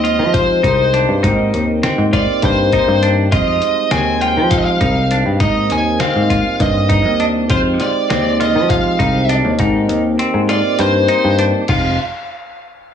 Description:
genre	progressive instrumental, band music in an uneven meter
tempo	201 BPM (eighths)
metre	7/8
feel	straight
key	F dorian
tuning	A4 = 440 Hz
part	bluesy overdriven lead guitar	melody	0.0-12.0 s	C5 to Ab5	-18 LUFS	equal	distortion, plate reverb, tape echo
part	percussive tonewheel organ	accompaniment	0.0-12.0 s	G3 to G4	-21 LUFS	right 2 dB	slow rotary speaker, plate reverb
part	semi-hollow electric guitar	arpeggios	0.0-12.0 s	C4 to F4	-21 LUFS	left 1 dB	plate reverb, tape echo
part	picked electric bass	bass	0.0-12.0 s	F1 to F3	-16 LUFS	left 1 dB	none
part	lo-fi sampler-style drum kit	drums	0.0-11.8 s	crash cymbal, hi-hat, kick drum, snare drum	-20 LUFS	equal	none
room	moderate studio reverb, RT60 0.7 s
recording	small room ambience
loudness	-12 LUFS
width	side -8 dB against mid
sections	0.0-11.7 A section; 11.7-12.9 B section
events	kick and snare drop out 9.9-11.7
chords	0.0 Fm7; 1.2 Abmaj9; 3.3 Fm7; 5.4 Abmaj9; 7.5 Fm7; 9.6 Abmaj9; 11.7 Fm7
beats	0.05 0.35 0.65 0.94 | 1.24 1.54 1.84 2.14 2.43 2.73 3.03 | 3.33 3.63 3.92 4.22 4.52 4.82 5.12 | 5.42 5.71 6.01 6.31 6.61 6.91 7.21 | 7.51 7.80 8.10 8.40 8.70 9.00 9.30 | 9.60 9.90 10.20 10.49 10.79 11.09 11.39 | 11.69

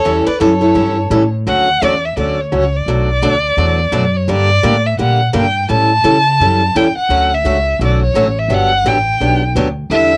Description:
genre	acoustic string swing (jazz manouche)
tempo	170 BPM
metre	4/4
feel	swing 60% on 8ths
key	D major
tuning	A4 = 440 Hz
part	warm violin	melody	0.0-10.2 s	C#5 to A5	-18 LUFS	equal	cassette tape
part	picked steel-string acoustic guitar	second line	0.0-1.3 s	A4 to B4	-21 LUFS	equal	cassette tape
part	picked steel-string acoustic guitar	accompaniment	0.0-10.1 s	B2 to A4	-18 LUFS	equal	cassette tape
part	upright bass	bass	0.0-10.2 s	G1 to C#3	-20 LUFS	equal	none
room	light reverb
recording	home recording on cassette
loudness	-14 LUFS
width	mono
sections	0.0-1.5 A section; 1.5-10.2 B section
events	none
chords	0.1 A7; 1.5 Dmaj9; 2.9 Bm7; 4.3 Gm; 5.7 A7; 7.1 Dmaj7; 8.5 Gmaj7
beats	| 0.06 0.41 0.77 1.12 | 1.47 1.82 2.17 2.52 | 2.88 3.23 3.58 3.93 | 4.29 4.64 4.99 5.34 | 5.70 6.05 6.40 6.75 | 7.10 7.46 7.81 8.16 | 8.51 8.86 9.21 9.56 | 9.91

